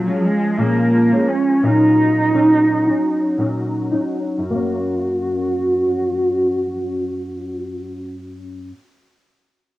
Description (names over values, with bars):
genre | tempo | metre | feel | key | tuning
indie pop | 86 BPM | 4/4 | swing 55% on 16ths | F# major | A4 = 439 Hz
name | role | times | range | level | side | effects
dark cello | melody | 0.0-8.0 s | F#3 to F#4 | -17 LUFS | right 1 dB | analog chorus, low-pass filter, cassette tape
nylon-string guitar | accompaniment | 0.0-8.8 s | F#2 to D#4 | -21 LUFS | left 1 dB | ensemble chorus, warbly pitch drift, low-pass filter, cassette tape
room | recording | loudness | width
light reverb | home recording on cassette | -15 LUFS | side -16 dB against mid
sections
0.0-4.4 A section; 4.4-7.2 B section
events
filter sweep 0.0-4.4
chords
0.0 A#m7; 1.6 F#6/A#; 4.4 F#